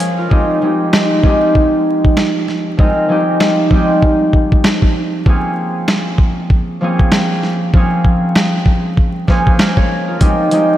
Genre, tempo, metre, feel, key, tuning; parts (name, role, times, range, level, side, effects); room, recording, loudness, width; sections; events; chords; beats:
hip hop, boom-bap hip-hop; 97 BPM; 4/4; swing 57% on 16ths; F minor; A4 = 438 Hz
concert harp; accompaniment; 0.0-10.8 s; F3 to F5; -14 LUFS; equal; cassette tape, high-pass filter, low-pass filter
dusty soul sampler-style drum kit; drums; 0.0-10.7 s; hi-hat, kick drum, snare drum; -13 LUFS; equal
wet lush hall reverb, RT60 2.7 s; dreamy mix soaked in reverb, vinyl crackle; -11 LUFS; side -13 dB against mid
0.3-10.8 A section
break 0.0-0.3; hi-hats muted 0.3-10.2
0.3 Fm9; 5.3 Bbm7; 10.2 Fm9
| 0.31 0.93 1.55 2.17 | 2.79 3.41 4.03 4.64 | 5.26 5.88 6.50 7.12 | 7.74 8.36 8.97 9.59 | 10.21